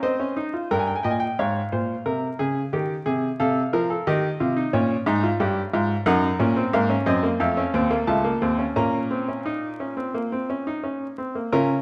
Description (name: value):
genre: classical, baroque-style 4-part fugue for grand piano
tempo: 89 BPM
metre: 4/4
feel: straight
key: Bb minor from 6.1 s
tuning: A4 = 436 Hz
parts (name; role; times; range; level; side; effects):
- bright baby grand piano; solo; 0.0-11.8 s; Db2 to Bb5; -24 LUFS; equal; none
room: moderate recital hall reverb, RT60 1.4 s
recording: dark, warm production, vinyl crackle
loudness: -24 LUFS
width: mono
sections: 0.7-11.5 A section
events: none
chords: 0.0 Ab/C (rootless); 0.7 Eb7/G; 2.1 Ab/C; 3.4 F7/C; 4.7 Bbm; 6.1 Ebm/Gb; 7.4 F; 8.8 Bbm